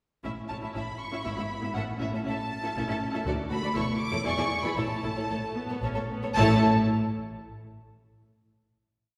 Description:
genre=quick classical-period movement for string orchestra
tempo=112-123 BPM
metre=3/4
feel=straight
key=A major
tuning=A4 = 441 Hz
part: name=rich symphonic violin section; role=second line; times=0.2-6.6 s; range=C#4 to E5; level=-38 LUFS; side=equal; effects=none
part: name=warm symphonic viola section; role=accompaniment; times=0.2-6.7 s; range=A3 to F#4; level=-33 LUFS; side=equal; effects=none
part: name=warm symphonic cello section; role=bass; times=0.2-6.6 s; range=D2 to A2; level=-37 LUFS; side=equal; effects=none
part: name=warm symphonic double bass section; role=bass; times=0.2-6.6 s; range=E1 to D2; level=-36 LUFS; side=equal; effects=none
part: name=warm symphonic violin section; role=melody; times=0.5-6.6 s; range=E5 to D6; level=-35 LUFS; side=equal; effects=none
room=wet concert hall reverb, RT60 1.9 s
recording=recorded in a church or concert hall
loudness=-28 LUFS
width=mono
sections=0.2-6.4 A section; 6.4-7.9 final chord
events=none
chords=0.2 A; 1.2 E/G#; 1.7 A; 3.3 D; 3.7 A; 4.2 E5; 4.8 A; 6.4 A5

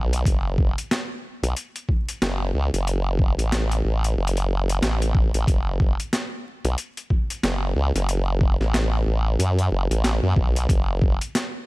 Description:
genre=glitch hop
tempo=92 BPM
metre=4/4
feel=swing 59% on 16ths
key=F# minor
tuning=A4 = 439 Hz
part: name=formant-sweep wobble bass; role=bass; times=0.0-11.2 s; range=F#1 to F#2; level=-22 LUFS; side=equal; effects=chorus
part: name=boom bap sampler-style drum kit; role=drums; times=0.1-11.5 s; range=hi-hat, snare drum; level=-27 LUFS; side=equal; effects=overdrive
part: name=electronic kick drum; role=drums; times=0.3-11.2 s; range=none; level=-21 LUFS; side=equal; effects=overdrive
room=little or no reverb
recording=vinyl crackle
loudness=-20 LUFS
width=side -22 dB against mid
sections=0.0-11.7 A section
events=none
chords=none

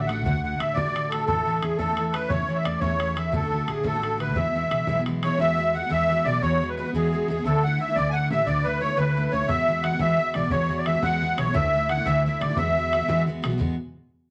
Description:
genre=celtic folk, Celtic jig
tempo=117 BPM (dotted quarters)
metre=6/8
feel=straight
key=E mixolydian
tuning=A4 = 441 Hz
part: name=musette accordion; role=melody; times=0.0-13.2 s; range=G#4 to G#5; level=-26 LUFS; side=equal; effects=none
part: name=picked steel-string acoustic guitar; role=accompaniment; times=0.0-13.8 s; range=D2 to F#4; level=-29 LUFS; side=equal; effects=none
part: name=upright bass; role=bass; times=0.0-13.8 s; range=A1 to E2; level=-34 LUFS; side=equal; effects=none
part: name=bodhran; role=percussion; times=0.1-5.3, 9.5-13.8 s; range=none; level=-34 LUFS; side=equal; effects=none
room=wet studio reverb, RT60 0.7 s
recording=none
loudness=-24 LUFS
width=mono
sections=0.0-5.4 A section; 5.4-13.6 B section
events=none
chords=0.0 D; 1.3 A; 3.3 D; 4.4 E; 5.4 Eadd9; 7.4 Dsus2; 9.5 Eadd9; 11.5 Dsus2; 12.6 Eadd9

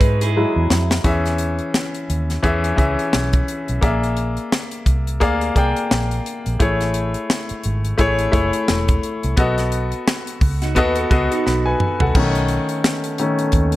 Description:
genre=lush 1970s-style soul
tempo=86 BPM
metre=4/4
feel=swing 58% on 16ths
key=E major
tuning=A4 = 441 Hz
part: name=clear baby grand piano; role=accompaniment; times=0.0-13.8 s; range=D#3 to B5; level=-20 LUFS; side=left 2 dB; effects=none
part: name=mellow French horn section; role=sustained chords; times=0.0-1.0, 12.1-13.8 s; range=G#3 to A4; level=-31 LUFS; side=right 5 dB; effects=none
part: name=electric guitar through a small old amp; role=riff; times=0.0-1.0, 10.6-12.1 s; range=D#4 to B4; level=-24 LUFS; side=right 4 dB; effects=phaser
part: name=vintage muted fingered electric bass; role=bass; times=0.0-13.8 s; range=E1 to G#2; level=-21 LUFS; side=equal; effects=none
part: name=tight funk drum kit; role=drums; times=0.0-13.8 s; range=crash cymbal, hi-hat, kick drum, snare drum, toms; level=-20 LUFS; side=equal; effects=none
room=light reverb, small room reverb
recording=dark, warm production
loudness=-17 LUFS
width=side -16 dB against mid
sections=0.0-1.1 A section; 1.1-12.1 B section; 12.1-13.8 C section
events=grand piano solo 0.0-1.1, 12.1-13.8; drum fill 0.4-1.1, 11.5-12.1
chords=0.0 Emaj7; 1.1 E6; 3.8 A#7#11; 6.6 Amaj7; 9.4 B7

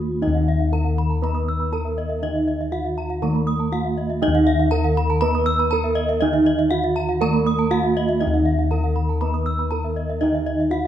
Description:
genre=Balinese gamelan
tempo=120 BPM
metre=4/4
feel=straight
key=Eb pelog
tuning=A4 = 440 Hz
part: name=gamelan-type bronze metallophone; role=melody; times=0.0-10.9 s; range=Eb4 to Cb5-40c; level=-23 LUFS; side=right 2 dB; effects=none
part: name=gamelan-type bronze metallophone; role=accompaniment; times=0.0-10.9 s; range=Eb3 to Cb4-40c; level=-28 LUFS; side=right 8 dB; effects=none
part: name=gamelan-type bossed gongs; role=bass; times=0.0-10.9 s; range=Eb2 to Fb4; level=-22 LUFS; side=left 2 dB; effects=none
part: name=gamelan-type bronze metallophone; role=arpeggios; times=0.2-10.8 s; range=Eb5 to Fb6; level=-27 LUFS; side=left 2 dB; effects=none
part: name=gamelan-type bronze metallophone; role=arpeggios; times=0.3-10.9 s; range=Fb5 to Eb6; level=-30 LUFS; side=right 6 dB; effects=none
room=moderate recital hall reverb, RT60 1.4 s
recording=dark, warm production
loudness=-18 LUFS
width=side -10 dB against mid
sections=0.0-8.2 A section; 8.2-10.9 A section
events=break 0.0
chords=none

